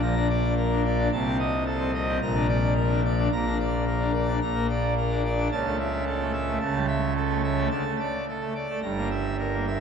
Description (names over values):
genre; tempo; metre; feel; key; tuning
classical, organ toccata; 109 BPM; 4/4; straight; unclear; A4 = 439 Hz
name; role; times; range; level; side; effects
pipe organ, full organ; solo; 0.0-9.8 s; G1 to Bb5; -23 LUFS; equal; none
room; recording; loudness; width
wet cathedral reverb, RT60 5.8 s; dark, warm production; -23 LUFS; side -7 dB against mid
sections
0.0-9.8 A section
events
none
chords
0.0 Bb; 1.1 Cm6; 2.2 Bb; 5.5 A7/C#; 7.7 D5; 8.8 Edim/G